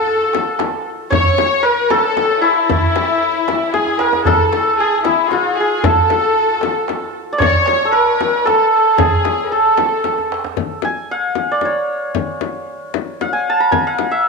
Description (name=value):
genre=Persian modal ensemble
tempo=114 BPM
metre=3/4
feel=straight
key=A dastgah chahargah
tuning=A4 = 440 Hz
part: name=santur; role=melody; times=0.0-14.3 s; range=E4 to Bb5+45c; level=-16 LUFS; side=right 1 dB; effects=none
part: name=dark studio violin section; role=second line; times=0.0-10.3 s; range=E4 to C#5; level=-20 LUFS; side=left 1 dB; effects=none
part: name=rich kamancheh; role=second line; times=0.0-10.3 s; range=E4 to D5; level=-22 LUFS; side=left 10 dB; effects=none
part: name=tombak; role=percussion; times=0.1-10.6 s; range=none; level=-22 LUFS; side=right 4 dB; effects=none
part: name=frame drum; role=percussion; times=0.3-14.1 s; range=none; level=-22 LUFS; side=left 11 dB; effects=none
room=moderate echo chamber reverb, RT60 2.3 s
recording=1960s-style stereo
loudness=-13 LUFS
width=side -3 dB against mid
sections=0.0-10.6 A section; 10.6-14.3 B section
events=drum fill 3.7-4.3, 10.0-10.6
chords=none